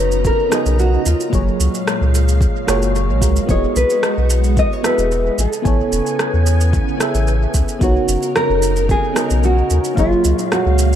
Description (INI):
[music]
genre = sunset chillout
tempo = 111 BPM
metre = 4/4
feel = straight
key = unclear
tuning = A4 = 437 Hz
[part]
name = nylon-string guitar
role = melody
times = 0.0-11.0 s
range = F4 to D#5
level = -19 LUFS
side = equal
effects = analog delay, shimmer reverb
[part]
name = mellow FM electric piano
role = accompaniment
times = 0.0-11.0 s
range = F#3 to G#5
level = -22 LUFS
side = right 1 dB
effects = chorus, auto-pan, analog delay, shimmer reverb
[part]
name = soft string machine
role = sustained chords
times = 0.0-11.0 s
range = A#2 to A#5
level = -24 LUFS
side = equal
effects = phaser, ensemble chorus, vintage 12-bit sampler grit, shimmer reverb
[part]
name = warm sub bass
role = bass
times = 0.0-11.0 s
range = E1 to E2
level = -16 LUFS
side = equal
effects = none
[part]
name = electronic shaker and rim click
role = drums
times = 0.1-11.0 s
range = none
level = -24 LUFS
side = right 1 dB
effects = overdrive, dub echo
[part]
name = electronic kick drum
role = drums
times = 0.2-10.1 s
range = none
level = -19 LUFS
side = equal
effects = overdrive
[sound]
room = moderate spring reverb, RT60 2.7 s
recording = echo-heavy mix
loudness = -14 LUFS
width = side -10 dB against mid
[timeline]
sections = 0.0-11.0 A section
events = none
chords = 0.0 Bmaj9; 1.3 F#maj9; 3.5 Emaj9; 5.4 Amaj9; 7.8 Bmaj9; 10.0 F#maj9